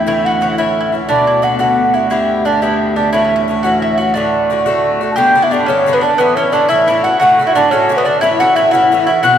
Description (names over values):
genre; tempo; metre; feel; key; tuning
celtic folk, Celtic jig; 118 BPM (dotted quarters); 6/8; straight; unclear; A4 = 439 Hz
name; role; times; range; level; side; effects
reedy baroque flute; melody; 0.0-9.4 s; B4 to A5; -13 LUFS; equal; none
bowl-back mandolin; second line; 0.0-9.4 s; B3 to G4; -18 LUFS; right 4 dB; none
Irish bouzouki; accompaniment; 0.0-9.4 s; G2 to G4; -18 LUFS; left 4 dB; none
rich cello; drone; 0.0-5.2 s; D2; -22 LUFS; right 1 dB; none
hollow wooden whistle; second line; 9.2-9.4 s; F#6; -11 LUFS; left 8 dB; none
room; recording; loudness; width
wet church reverb, RT60 2.6 s; recorded in a church or concert hall; -11 LUFS; side -9 dB against mid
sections
0.0-5.2 A section; 5.2-9.4 B section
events
none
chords
0.1 A; 1.1 Bm; 2.1 G; 3.1 F#m7; 4.1 D; 5.2 G; 6.2 A; 7.2 D; 8.2 A